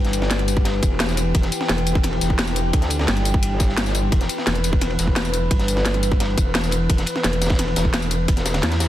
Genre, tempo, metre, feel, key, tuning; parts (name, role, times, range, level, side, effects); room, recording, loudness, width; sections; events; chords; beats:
dark technical drum and bass; 173 BPM; 4/4; straight; E minor; A4 = 441 Hz
metallic inharmonic drone; sustained chords; 0.0-8.9 s; E3 to B4; -27 LUFS; left 1 dB; chorus, built-in reverb, sidechain pumping
metallic wobble bass; bass; 0.0-8.9 s; E1 to E2; -22 LUFS; equal; chorus, tube saturation, sidechain pumping
drum and bass drum kit; drums; 0.0-8.9 s; hi-hat, snare drum, tambourine; -24 LUFS; left 1 dB; overdrive, studio reverb
crunchy breakbeat drum kit; drums; 0.1-8.9 s; ride cymbal, snare drum; -30 LUFS; equal; high-pass filter on cymbals, studio reverb, high-pass filter on snare, high-pass filter on room
electronic kick drum; drums; 0.6-8.4 s; -19 LUFS; equal; studio reverb
light reverb, digital ambience; dense, heavily limited modern master; -18 LUFS; side -13 dB against mid
0.0-8.9 A section
0.0 Em
0.31 0.65 1.00 | 1.35 1.69 2.04 2.39 | 2.73 3.08 3.43 3.77 | 4.12 4.47 4.82 5.16 | 5.51 5.86 6.20 6.55 | 6.90 7.24 7.59 7.94 | 8.28 8.63